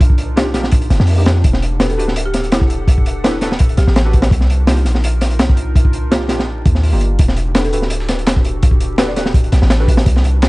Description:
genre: drum and bass, jungle.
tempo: 167 BPM.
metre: 4/4.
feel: swing 53% on 16ths.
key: unclear.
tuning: A4 = 440 Hz.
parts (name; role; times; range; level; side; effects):
warbly tape-like pad; sustained chords; 0.0-10.5 s; D4 to F#5; -28 LUFS; left 1 dB; chorus, built-in reverb, vintage 12-bit sampler grit.
warm 808-style bass; bass; 0.0-10.5 s; D1 to F2; -16 LUFS; equal; tube saturation.
crunchy breakbeat drum kit; drums; 0.0-10.5 s; hi-hat, kick drum, snare drum; -14 LUFS; equal; none.
deep mellow chord stab; stabs; 0.4-10.5 s; Bb3 to B4; -24 LUFS; right 1 dB; chorus, dub echo.
folk marimba with medium mallets; melody; 1.8-4.3, 7.5-9.2 s; E4 to D5; -25 LUFS; equal; vintage 12-bit sampler grit, dub echo.
breakbeat sampler-style drum kit; drums; 7.2-10.5 s; hi-hat, snare drum; -29 LUFS; right 1 dB; high-pass filter on hats, high-pass filter on snare.
room: small room ambience.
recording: dark, warm production, vinyl crackle, nothing above 10.7 kHz.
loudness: -12 LUFS.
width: side -22 dB against mid.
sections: 0.0-10.5 A section.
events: none.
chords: 0.0 Cm11; 1.4 Em11; 4.3 Cm11; 7.2 Em11.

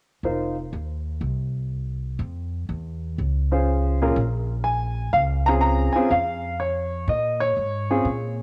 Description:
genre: jazz piano trio.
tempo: 123 BPM.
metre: 4/4.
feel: swing 67% on 8ths.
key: Bb minor.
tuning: A4 = 435 Hz.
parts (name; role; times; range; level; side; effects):
warm concert grand piano; melody; 0.2-0.5, 3.5-8.3 s; Bb2 to Bb5; -25 LUFS; equal; cassette tape.
upright bass; bass; 0.2-8.4 s; F1 to Bb2; -28 LUFS; equal; none.
room: moderate spring reverb, RT60 1.8 s, studio reverb.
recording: home recording on cassette.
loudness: -24 LUFS.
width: mono.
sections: 0.3-4.2 A section; 4.2-8.4 B section.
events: none.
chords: 0.3 F7(no3); 2.2 Bbm7 (rootless); 4.2 Bbm7.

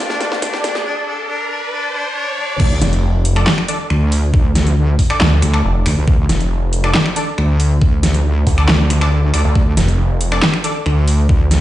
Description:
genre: heavy wobble dubstep.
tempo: 138 BPM.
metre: 4/4.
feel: half-time.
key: D minor.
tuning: A4 = 439 Hz.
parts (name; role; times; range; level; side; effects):
dark cello; melody; 0.0-2.6 s; D4; -22 LUFS; left 1 dB; digital delay.
lush unison pad; sustained chords; 0.0-0.8 s; A3 to F5; -32 LUFS; equal; chorus, phaser, sidechain pumping.
riser; sound effects; 0.0-2.6 s; none; -25 LUFS; equal; none.
dubstep drum kit; drums; 0.1-11.6 s; crash cymbal, finger snaps, handclaps, hi-hat, snare drum, toms; -18 LUFS; equal; overdrive.
electronic kick drum; drums; 0.4-11.4 s; none; -14 LUFS; equal; overdrive.
wobble bass; bass; 2.6-11.6 s; D2; -14 LUFS; equal; chorus, overdrive.
snarling distorted saw bass; bass; 2.8-10.4 s; F1 to D2; -14 LUFS; equal; distortion, overdrive.
orchestra-hit-like synth stab; stabs; 3.4-10.7 s; D4 to D5; -23 LUFS; left 1 dB; built-in reverb, digital delay.
room: light reverb, digital ambience.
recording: played on a big sound system in a bare room, large studio reverb, high-pass filter, nothing above 10.3 kHz.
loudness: -13 LUFS.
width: side -14 dB against mid.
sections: 0.0-2.6 A section; 2.6-11.6 B section.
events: build-up 0.0-2.6; drum fill 0.0-0.9, 2.4; riser 0.0-2.6; drop 2.6-11.6.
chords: 0.0 F; 2.6 D5.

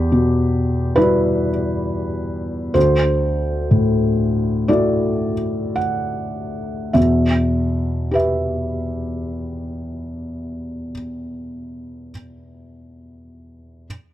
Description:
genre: neoclassical minimalist piano.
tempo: 49-72 BPM.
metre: 4/4.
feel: rubato.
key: E minor.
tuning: A4 = 440 Hz.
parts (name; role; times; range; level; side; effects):
felt-muted upright piano; solo; 0.0-13.9 s; D2 to F#5; -18 LUFS; equal; none.
room: small room ambience.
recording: dry, close 1970s-style studio recording.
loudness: -17 LUFS.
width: side -13 dB against mid.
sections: 0.0-7.0 A section; 7.0-11.6 B section.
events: slowing down 0.0-7.0.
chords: 0.0 Emadd9; 2.8 Dadd9; 7.0 Em.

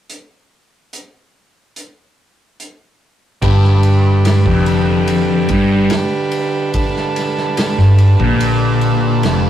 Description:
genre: psychedelic rock.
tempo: 72 BPM.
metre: 4/4.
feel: straight.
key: G mixolydian.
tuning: A4 = 440 Hz.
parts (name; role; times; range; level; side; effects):
vintage drum kit; drums; 0.1-9.4 s; hi-hat, kick drum, ride cymbal, snare drum; -22 LUFS; equal; none.
combo organ; sustained chords; 3.4-9.5 s; D3 to B4; -18 LUFS; right 4 dB; spring reverb.
fuzz guitar; riff; 3.4-9.5 s; F2 to Bb2; -12 LUFS; left 1 dB; distortion, phaser.
fingered electric bass; bass; 3.4-9.5 s; F1 to Bb1; -20 LUFS; equal; none.
room: wet booth ambience, RT60 0.2 s.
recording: rough rehearsal-room recording, warm saturation.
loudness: -11 LUFS.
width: side -11 dB against mid.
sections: 0.1-3.4 A section; 3.4-9.5 B section.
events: none.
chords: 0.1 N.C.; 3.4 G.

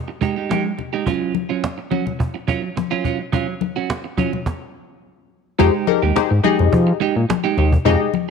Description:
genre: early-eighties boogie funk.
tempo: 106 BPM.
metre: 4/4.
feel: straight.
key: unclear.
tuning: A4 = 436 Hz.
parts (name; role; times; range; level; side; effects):
semi-hollow electric guitar; riff; 0.1-8.2 s; Gb3 to Ab4; -22 LUFS; right 10 dB; lush chorus.
cajon; drums; 0.2-8.2 s; none; -24 LUFS; right 2 dB; none.
congas; percussion; 0.5-8.3 s; none; -26 LUFS; left 12 dB; none.
funky polysynth comp; accompaniment; 5.6-8.1 s; Eb4 to Eb5; -19 LUFS; left 14 dB; chorus.
chorused synth bass; bass; 5.6-8.0 s; Eb2 to F3; -16 LUFS; left 1 dB; none.
room: light reverb, studio reverb.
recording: 1960s-style stereo with parts hard left and right.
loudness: -17 LUFS.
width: side -6 dB against mid.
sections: 0.0-5.6 A section; 5.6-8.3 B section.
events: stop 4.5-5.6.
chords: 0.0 Ebadd11/Ab; 1.1 Dbadd11/Gb; 5.6 Fm9.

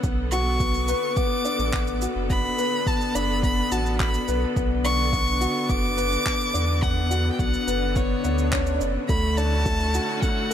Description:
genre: piano and strings electronica.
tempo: 106 BPM.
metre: 4/4.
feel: straight.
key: B minor.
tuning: A4 = 441 Hz.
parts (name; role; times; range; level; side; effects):
rich studio string section; sustained chords; 0.0-10.5 s; D3 to A4; -32 LUFS; right 1 dB; sidechain pumping.
dark grand piano; riff; 0.0-10.5 s; A3 to D5; -26 LUFS; left 4 dB; ping-pong delay.
warm sub bass; bass; 0.0-10.0 s; F#1 to E2; -26 LUFS; equal; sidechain pumping.
electronic kick drum; drums; 0.0-10.3 s; none; -26 LUFS; equal; overdrive.
electronic shaker and handclaps; drums; 0.0-10.5 s; none; -32 LUFS; right 2 dB; overdrive.
clear violin; melody; 0.3-10.5 s; C#5 to D6; -27 LUFS; right 1 dB; ping-pong delay.
swell; sound effects; 8.2-9.1 s; none; -34 LUFS; right 3 dB; none.
room: light reverb, digital ambience.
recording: none.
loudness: -21 LUFS.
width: side -9 dB against mid.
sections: 0.0-10.5 A section.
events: swell 8.2-9.1.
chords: 0.0 Bmadd9; 9.1 Dmaj7.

